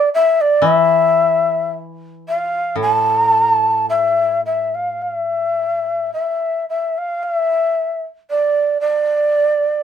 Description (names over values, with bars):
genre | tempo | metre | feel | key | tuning
japanese traditional, Japanese chamber music | 52-58 BPM | 2/4 | rubato | unclear | A4 = 441 Hz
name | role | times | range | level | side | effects
breathy mellow shakuhachi | melody | 0.0-9.8 s | D5 to A5 | -15 LUFS | equal | none
koto | accompaniment | 0.6-6.1 s | A2 to E3 | -23 LUFS | left 3 dB | none
room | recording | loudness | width
moderate studio reverb, RT60 0.5 s | minimal, uncompressed stereo recording | -15 LUFS | side -8 dB against mid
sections
0.0-9.8 A section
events
none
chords
none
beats
| 0.65 1.70 | 2.78 3.88 | 5.00 6.12 | 7.24 8.29 | 9.34